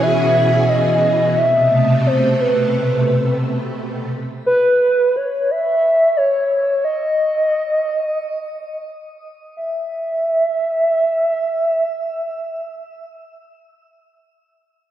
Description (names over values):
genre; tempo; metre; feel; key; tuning
dream pop; free time; none; none; unclear; A4 = 440 Hz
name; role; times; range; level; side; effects
hollow clarinet-like synth lead; melody; 0.0-13.1 s; B4 to E5; -16 LUFS; equal; chorus, slapback echo, shimmer reverb
string machine, violins; sustained chords; 0.0-4.1 s; B2 to G#4; -17 LUFS; equal; ensemble chorus, shimmer reverb
room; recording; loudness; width
wet echo chamber reverb, RT60 2.5 s; none; -15 LUFS; side -11 dB against mid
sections
0.0-9.6 A section; 9.6-12.3 B section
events
none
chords
0.0 E6; 1.4 Amadd9; 4.1 N.C.